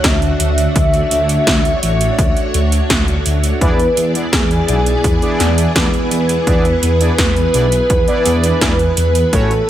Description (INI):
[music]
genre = synthwave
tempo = 84 BPM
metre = 4/4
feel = straight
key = unclear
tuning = A4 = 440 Hz
[part]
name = warm velvety synth lead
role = melody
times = 0.0-9.7 s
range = G#4 to E5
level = -18 LUFS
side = equal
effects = chorus, digital delay
[part]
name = string machine, full ensemble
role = sustained chords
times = 0.0-9.7 s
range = A3 to F#5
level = -21 LUFS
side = equal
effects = ensemble chorus, sidechain pumping
[part]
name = dark detuned saw bass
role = bass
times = 0.0-9.6 s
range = A1 to E2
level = -16 LUFS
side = equal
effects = none
[part]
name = 80s electronic pad drums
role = drums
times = 0.0-9.7 s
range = hi-hat, snare drum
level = -19 LUFS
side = right 1 dB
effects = overdrive
[part]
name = electronic kick drum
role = drums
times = 0.0-9.5 s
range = none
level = -18 LUFS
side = equal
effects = overdrive
[part]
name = analog synth brass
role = stabs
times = 3.6-9.5 s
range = A2 to D5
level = -22 LUFS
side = right 2 dB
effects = chorus, cassette tape
[sound]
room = little or no reverb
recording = none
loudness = -12 LUFS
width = side -12 dB against mid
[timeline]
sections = 0.0-9.7 A section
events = none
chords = 0.0 D; 3.6 E7